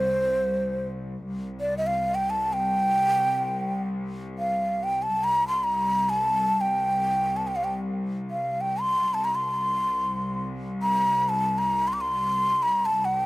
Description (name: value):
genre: Arabic maqam ensemble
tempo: free time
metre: none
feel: none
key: C maqam rast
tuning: A4 = 437 Hz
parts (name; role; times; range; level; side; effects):
- breathy ney; melody; 0.0-13.3 s; C5 to D6; -23 LUFS; equal; slapback echo
- rich symphonic cello section; drone; 0.0-13.3 s; C2; -32 LUFS; left 1 dB; none
room: little or no reverb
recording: recorded outdoors, with no room sound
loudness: -23 LUFS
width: side -20 dB against mid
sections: 0.0-1.3 A section; 1.3-13.3 A section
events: none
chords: none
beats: free time